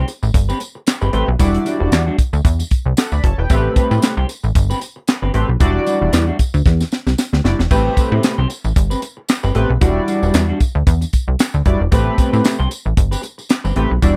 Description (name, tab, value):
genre	early-eighties boogie funk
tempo	114 BPM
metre	4/4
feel	swing 56% on 16ths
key	A minor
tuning	A4 = 440 Hz
part	semi-hollow electric guitar	riff	0.0-14.2 s	G3 to C5	-27 LUFS	equal	lush chorus
part	plucky analog bass	bass	0.0-14.2 s	E1 to A2	-19 LUFS	equal	none
part	tight funk drum kit	drums	0.1-14.2 s	crash cymbal, handclaps, hi-hat, kick drum, snare drum	-18 LUFS	equal	none
part	tambourine	percussion	0.1-14.2 s	none	-35 LUFS	equal	none
part	chorused polysynth	accompaniment	1.1-14.2 s	G3 to B5	-22 LUFS	equal	none
room	little or no reverb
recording	dry, close 1970s-style studio recording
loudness	-17 LUFS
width	mono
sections	0.0-14.2 A section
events	drum fill 6.7-7.7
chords	0.0 Am9; 1.4 Em9; 3.5 Am9; 5.6 Em9; 7.7 Am9; 9.8 Em9; 11.9 Am9